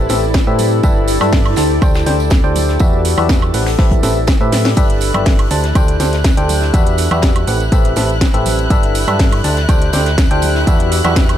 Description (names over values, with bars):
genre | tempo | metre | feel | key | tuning
piano house | 122 BPM | 4/4 | straight | G major | A4 = 440 Hz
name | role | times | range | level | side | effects
barking FM electric piano | riff | 0.0-11.4 s | C4 to A5 | -18 LUFS | left 2 dB | chorus, sidechain pumping, low-pass filter, digital delay
solid FM bass | bass | 0.0-11.4 s | G1 to A2 | -17 LUFS | equal | sidechain pumping
granular cloud pad | texture | 0.0-11.4 s | E4 to G5 | -23 LUFS | equal | built-in reverb, sidechain pumping
crisp fusion drum kit | drums | 0.1-11.3 s | hi-hat, snare drum, tambourine | -30 LUFS | equal | sidechain pumping on hats, high-pass filter on hats, high-pass filter on snare, sidechain pumping on perc, high-pass filter on perc, high-pass filter on room
house drum kit | drums | 0.1-11.4 s | hi-hat, snare drum, woodblock | -21 LUFS | equal | none
tambourine and congas | percussion | 0.1-11.4 s | none | -29 LUFS | right 2 dB | none
electronic kick drum | drums | 0.3-11.3 s | none | -13 LUFS | equal | none
warm studio violin section | sustained chords | 4.8-11.4 s | E4 to F#6 | -24 LUFS | left 1 dB | sidechain pumping
room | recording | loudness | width
little or no reverb | none | -11 LUFS | side -11 dB against mid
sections
0.0-11.4 A section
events
drum fill 4.5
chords
0.0 Am9; 0.8 G69; 1.6 D7sus4; 2.8 Em9; 3.5 Am9; 4.8 G69; 5.5 D7sus4; 6.7 Em9; 7.5 Am9; 8.7 G69; 9.4 D7sus4; 10.7 Em9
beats
0.34 | 0.84 1.33 1.82 2.31 | 2.80 3.29 3.79 4.28 | 4.77 5.26 5.75 6.25 | 6.74 7.23 7.72 8.21 | 8.71 9.20 9.69 10.18 | 10.67 11.16